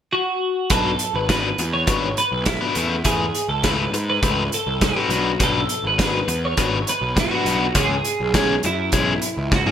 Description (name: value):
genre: indie rock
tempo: 102 BPM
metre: 4/4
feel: straight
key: B dorian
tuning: A4 = 440 Hz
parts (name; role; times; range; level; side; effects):
- twelve-string electric guitar; melody; 0.1-9.7 s; E4 to C#5; -23 LUFS; right 2 dB; lush chorus
- biting overdriven guitar; riff; 0.7-9.7 s; E3 to B4; -23 LUFS; left 5 dB; none
- fuzz picked electric bass; bass; 0.7-9.6 s; G#1 to G#2; -25 LUFS; right 1 dB; overdrive
- loose indie drum kit; drums; 0.7-9.7 s; hi-hat, kick drum, snare drum, toms; -22 LUFS; right 1 dB; gated reverb
room: light reverb, small room ambience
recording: bright 1980s-style digital production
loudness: -18 LUFS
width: side -9 dB against mid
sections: 0.7-9.7 A section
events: drum fill 9.5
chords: 0.0 N.C.; 0.7 Bm; 2.8 Esus4; 5.1 Bm; 7.8 C#m